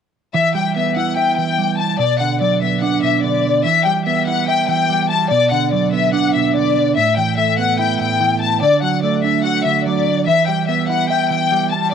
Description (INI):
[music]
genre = hip hop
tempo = 145 BPM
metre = 4/4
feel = half-time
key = E minor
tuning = A4 = 440 Hz
[part]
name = warm studio violin section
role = melody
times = 0.3-11.9 s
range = D5 to A5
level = -16 LUFS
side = left 6 dB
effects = cassette tape, analog delay
[part]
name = mellow electric guitar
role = accompaniment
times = 0.3-11.9 s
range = A2 to E5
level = -18 LUFS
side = right 8 dB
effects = spring reverb, cassette tape
[sound]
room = moderate studio reverb, RT60 0.6 s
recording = home recording on cassette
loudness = -14 LUFS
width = side -7 dB against mid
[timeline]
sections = 0.3-3.7 A section; 3.7-11.9 B section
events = none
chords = 0.3 Em; 2.0 Bm; 3.7 Em; 5.3 Bm; 7.0 Asus2; 8.6 D; 10.3 Em